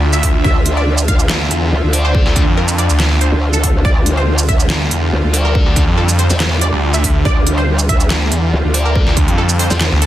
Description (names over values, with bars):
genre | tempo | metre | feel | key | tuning
heavy wobble dubstep | 141 BPM | 4/4 | half-time | D minor | A4 = 439 Hz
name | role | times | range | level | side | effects
wide unison pluck | melody | 0.0-10.1 s | A4 to F5 | -23 LUFS | right 1 dB | phaser, dub echo
supersaw pad | sustained chords | 0.0-10.1 s | D3 to E5 | -24 LUFS | right 1 dB | sidechain pumping
snarling distorted saw bass | bass | 0.0-10.1 s | D2 to F2 | -15 LUFS | equal | distortion, overdrive
granular cloud pad | texture | 0.0-10.1 s | D4 to F4 | -25 LUFS | equal | built-in reverb, sidechain pumping
dubstep drum kit | drums | 0.1-10.1 s | handclaps, hi-hat, shaker, snare drum | -18 LUFS | right 1 dB | none
electronic kick drum | drums | 0.2-9.3 s | none | -14 LUFS | equal | none
growl bass | bass | 0.4-9.9 s | D2 to E2 | -15 LUFS | equal | chorus, overdrive
sludgy distorted guitar | stabs | 1.9-2.4, 5.3-9.8 s | D4 to D5 | -24 LUFS | left 3 dB | overdrive, dub echo
room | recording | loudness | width
little or no reverb | dense, heavily limited modern master | -11 LUFS | side -13 dB against mid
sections
0.0-10.1 A section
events
kick drops out 9.8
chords
0.0 Dmadd9